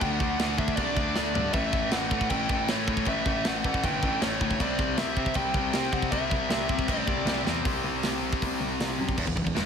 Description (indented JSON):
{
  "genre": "heavy metal",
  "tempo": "157 BPM",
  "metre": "4/4",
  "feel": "straight",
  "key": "unclear",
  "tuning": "A4 = 440 Hz",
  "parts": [
    { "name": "dark smooth lead guitar", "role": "melody", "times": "0.0-7.4 s", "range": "C#5 to G5", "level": "-32 LUFS", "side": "right 1 dB", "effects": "overdrive, tape echo" },
    { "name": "high-gain distorted guitar", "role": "riff", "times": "0.0-9.6 s", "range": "E2 to D4", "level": "-28 LUFS", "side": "left 1 dB", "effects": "distortion" },
    { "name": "warm concert grand piano", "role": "bass", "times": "0.0-9.6 s", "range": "E1 to C3", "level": "-32 LUFS", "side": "left 2 dB", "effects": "none" },
    { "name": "tight metal drum kit", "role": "drums", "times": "0.0-9.7 s", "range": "crash cymbal, hi-hat, kick drum, snare drum, toms", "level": "-30 LUFS", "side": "right 1 dB", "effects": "none" }
  ],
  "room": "small room ambience",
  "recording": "none",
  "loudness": "-24 LUFS",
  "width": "side -7 dB against mid",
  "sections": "0.0-7.6 A section; 7.6-9.2 B section",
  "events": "drum fill 1.2-1.5, 7.5",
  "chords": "0.0 D; 1.5 A; 4.6 C; 7.6 C5",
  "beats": "| 0.02 0.40 0.78 1.16 | 1.54 1.93 2.31 2.69 | 3.07 3.45 3.83 4.21 | 4.60 4.98 5.36 5.74 | 6.12 6.50 6.88 7.26 | 7.64 8.03 8.41 8.79 | 9.17 9.55"
}